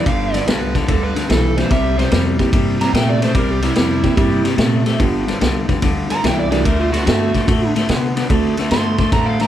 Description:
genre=electric blues shuffle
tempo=146 BPM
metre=4/4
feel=swing 67% on 8ths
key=unclear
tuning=A4 = 440 Hz
part: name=overdriven slide guitar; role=second line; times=0.0-9.5 s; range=E4 to C6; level=-22 LUFS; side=right 4 dB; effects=none
part: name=electric guitar at the edge of break-up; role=riff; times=0.0-9.5 s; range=G2 to B3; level=-19 LUFS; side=left 2 dB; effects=none
part: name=upright bass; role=bass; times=0.1-9.4 s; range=G1 to C3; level=-21 LUFS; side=equal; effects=none
part: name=vintage drum kit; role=drums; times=0.1-9.5 s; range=kick drum, ride cymbal, snare drum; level=-19 LUFS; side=equal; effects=none
part: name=mellow reed electric piano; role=accompaniment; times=1.6-8.6 s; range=G3 to A4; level=-23 LUFS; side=right 4 dB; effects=none
room=moderate large studio reverb, RT60 1.2 s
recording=band playing live in one room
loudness=-14 LUFS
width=side -11 dB against mid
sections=0.0-9.5 A section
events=electric slide guitar solo 0.0-9.5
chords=0.0 G; 1.7 C7; 5.0 G7; 6.7 D7

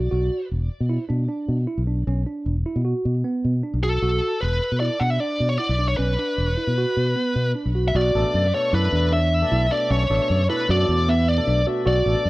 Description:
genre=progressive instrumental, progressive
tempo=153 BPM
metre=5/4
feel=straight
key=B minor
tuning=A4 = 440 Hz
part: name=tine electric piano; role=arpeggios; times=0.0-12.1 s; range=B3 to F#4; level=-26 LUFS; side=right 2 dB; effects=none
part: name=fingered electric bass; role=bass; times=0.0-12.3 s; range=E1 to B2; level=-21 LUFS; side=equal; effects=none
part: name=bluesy overdriven lead guitar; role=melody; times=3.8-12.3 s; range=A4 to F#5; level=-23 LUFS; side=left 1 dB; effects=distortion, digital delay
part: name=tonewheel organ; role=accompaniment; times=8.2-12.3 s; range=B2 to D4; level=-29 LUFS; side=left 1 dB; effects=overdrive, slow rotary speaker
room=moderate studio reverb, RT60 0.7 s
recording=worn, warbling old tape, cassette tape, warbly pitch drift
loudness=-19 LUFS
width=side -19 dB against mid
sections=0.0-8.0 A section; 8.0-12.3 B section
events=none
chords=0.1 E7sus2; 8.0 Bm7

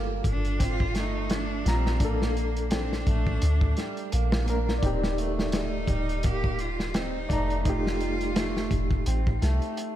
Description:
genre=trip hop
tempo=85 BPM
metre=4/4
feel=swing 57% on 16ths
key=unclear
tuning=A4 = 440 Hz
part: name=overdriven reed electric piano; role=accompaniment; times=0.0-10.0 s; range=A3 to Bb5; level=-33 LUFS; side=left 1 dB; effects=tremolo, vintage 12-bit sampler grit, tape echo
part: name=electric guitar through a small old amp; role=arpeggios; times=0.0-10.0 s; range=G3 to C4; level=-35 LUFS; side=right 3 dB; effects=vintage 12-bit sampler grit, analog delay
part: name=soft 808-style bass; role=bass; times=0.0-9.6 s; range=Eb1 to D2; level=-28 LUFS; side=equal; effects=none
part: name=crunchy breakbeat drum kit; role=drums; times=0.2-10.0 s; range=hi-hat, kick drum, snare drum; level=-29 LUFS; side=equal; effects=vintage 12-bit sampler grit
part: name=clear cello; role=melody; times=0.3-9.0 s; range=Bb3 to G4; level=-34 LUFS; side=equal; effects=dub echo
room=light reverb, small room ambience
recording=none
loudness=-24 LUFS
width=side -12 dB against mid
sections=0.0-10.0 A section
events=none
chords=0.0 Gm9; 2.0 Bbmaj7; 4.8 Ebmaj7; 7.7 F9

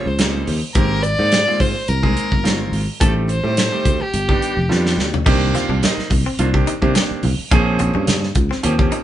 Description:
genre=electric jazz fusion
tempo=107 BPM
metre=4/4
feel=swing 54% on 16ths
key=G minor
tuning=A4 = 441 Hz
part: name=dark violin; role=melody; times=0.0-5.0 s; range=G4 to D5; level=-21 LUFS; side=left 1 dB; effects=none
part: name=bright grand piano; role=accompaniment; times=0.0-9.0 s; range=Db3 to F5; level=-22 LUFS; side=right 3 dB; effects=none
part: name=sustaining fretless electric bass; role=bass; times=0.1-8.9 s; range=F1 to C3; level=-20 LUFS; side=equal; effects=none
part: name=modern studio drum kit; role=drums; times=0.2-9.0 s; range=crash cymbal, hi-hat, kick drum, snare drum, toms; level=-19 LUFS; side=equal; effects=none
part: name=direct-recorded clean electric guitar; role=stabs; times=5.3-9.0 s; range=C4 to Eb4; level=-27 LUFS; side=left 3 dB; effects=none
part: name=congas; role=percussion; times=5.5-8.5 s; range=none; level=-26 LUFS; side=right 1 dB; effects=none
room=light reverb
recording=band playing live in one room, nothing above 10.4 kHz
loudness=-15 LUFS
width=side -12 dB against mid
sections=0.0-5.3 A section; 5.3-9.0 B section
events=drum fill 4.7-5.3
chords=0.0 Eb13; 0.8 Abmaj9; 3.0 Am7b5; 4.1 G7b13; 5.3 Cm9; 7.5 Bbm9

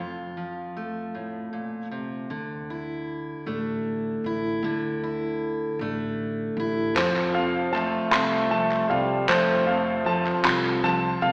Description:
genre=indie folk with a building arrangement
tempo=52 BPM (dotted quarters)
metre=6/8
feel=straight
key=unclear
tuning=A4 = 443 Hz
part: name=fingerpicked steel-string acoustic guitar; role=accompaniment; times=0.0-7.0 s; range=F2 to F4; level=-31 LUFS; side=equal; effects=none
part: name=upright bass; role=bass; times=2.3-11.3 s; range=A1 to F2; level=-39 LUFS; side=equal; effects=none
part: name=warm French horn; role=second line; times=7.0-11.2 s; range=F3 to A3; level=-29 LUFS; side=equal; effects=none
part: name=bright grand piano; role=accompaniment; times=7.0-11.3 s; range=F1 to C5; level=-33 LUFS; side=equal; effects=none
part: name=picked steel-string acoustic guitar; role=accompaniment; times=7.0-11.3 s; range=F3 to A4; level=-32 LUFS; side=equal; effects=none
part: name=warm upright piano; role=arpeggios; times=7.0-11.3 s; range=C5 to C6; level=-27 LUFS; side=equal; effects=none
part: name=group handclap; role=percussion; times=7.0-10.9 s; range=none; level=-31 LUFS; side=equal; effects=none
room=wet concert hall reverb, RT60 1.8 s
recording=recorded in a church or concert hall, AM radio sound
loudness=-26 LUFS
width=mono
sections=0.0-2.3 A section; 2.3-11.3 B section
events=build-up 2.3-11.3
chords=0.0 F; 2.3 Dsus2; 7.0 F

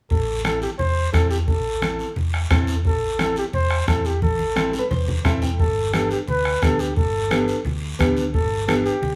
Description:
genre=latin, cumbia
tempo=175 BPM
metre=4/4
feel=straight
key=A minor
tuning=A4 = 445 Hz
part: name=mellow flugelhorn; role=melody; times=0.1-9.2 s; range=G4 to C5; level=-26 LUFS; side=equal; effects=none
part: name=hollow-body short-scale fingered electric bass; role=bass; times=0.1-9.2 s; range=G1 to E2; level=-28 LUFS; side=equal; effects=none
part: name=bombo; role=percussion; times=0.1-8.9 s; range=none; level=-25 LUFS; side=equal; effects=none
part: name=congas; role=percussion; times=0.1-9.2 s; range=none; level=-32 LUFS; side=equal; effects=none
part: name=guiro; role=percussion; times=0.1-9.2 s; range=none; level=-38 LUFS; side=equal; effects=none
part: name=nylon-string guitar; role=accompaniment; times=0.4-8.9 s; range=B3 to G5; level=-28 LUFS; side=equal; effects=none
room=moderate large studio reverb, RT60 1.1 s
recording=band playing live in one room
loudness=-21 LUFS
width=mono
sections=0.1-9.2 A section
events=drum fill 4.2-5.6; nylon-string guitar fill 4.6-5.6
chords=0.1 Am; 5.6 G

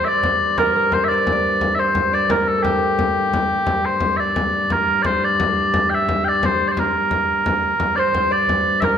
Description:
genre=medieval dance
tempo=116 BPM (dotted quarters)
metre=6/8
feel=straight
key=G minor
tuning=A4 = 440 Hz
part: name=mellow small bagpipes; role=melody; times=0.0-9.0 s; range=G4 to G5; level=-18 LUFS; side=equal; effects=none
part: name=concert harp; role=second line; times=0.0-5.0, 8.0-9.0 s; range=G4 to D5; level=-24 LUFS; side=right 3 dB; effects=none
part: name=dark viola da gamba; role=drone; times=0.0-9.0 s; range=G2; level=-26 LUFS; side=left 2 dB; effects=none
part: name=frame drum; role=percussion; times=0.2-9.0 s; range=none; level=-25 LUFS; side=left 2 dB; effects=none
room=wet recital hall reverb, RT60 1.5 s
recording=none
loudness=-16 LUFS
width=side -8 dB against mid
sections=0.0-3.7 A section; 3.7-9.0 A section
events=none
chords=none

